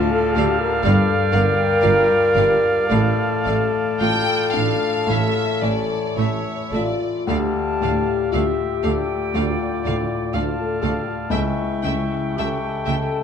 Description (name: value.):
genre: classical.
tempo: 53-63 BPM.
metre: 4/4.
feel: rubato.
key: D minor.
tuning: A4 = 441 Hz.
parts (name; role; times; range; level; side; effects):
warm grand piano; melody; 0.0-13.2 s; C#2 to A4; -24 LUFS; left 3 dB; none.
bright clarinet; second line; 0.0-13.2 s; C#5 to E5; -31 LUFS; left 3 dB; none.
mellow cor anglais; second line; 0.0-13.2 s; D5 to G5; -27 LUFS; right 5 dB; none.
small flute group; second line; 0.0-13.2 s; G5 to C#6; -32 LUFS; left 1 dB; none.
mellow French horn section; sustained chords; 0.0-13.2 s; E4 to Bb4; -22 LUFS; left 3 dB; none.
mellow tuba; bass; 0.0-13.1 s; G1 to D2; -30 LUFS; right 7 dB; none.
rich symphonic violin section; melody; 0.4-13.0 s; E5 to G5; -35 LUFS; left 1 dB; none.
rich symphonic violin section; second line; 0.4-12.9 s; C#5 to G5; -27 LUFS; left 2 dB; none.
rich symphonic viola section; accompaniment; 0.4-13.0 s; G3 to A3; -31 LUFS; right 3 dB; none.
rich chamber cello section; bass; 0.4-13.0 s; C#2 to A2; -27 LUFS; right 5 dB; none.
warm symphonic double bass section; bass; 0.4-13.0 s; G1 to D2; -30 LUFS; right 5 dB; none.
room: moderate recital hall reverb, RT60 1.4 s.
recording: none.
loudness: -17 LUFS.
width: side -7 dB against mid.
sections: 0.0-13.2 A section.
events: none.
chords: 0.0 Dm; 0.8 Gm7; 2.9 Dm/A; 5.1 A; 7.3 Dm; 11.3 A7/C#.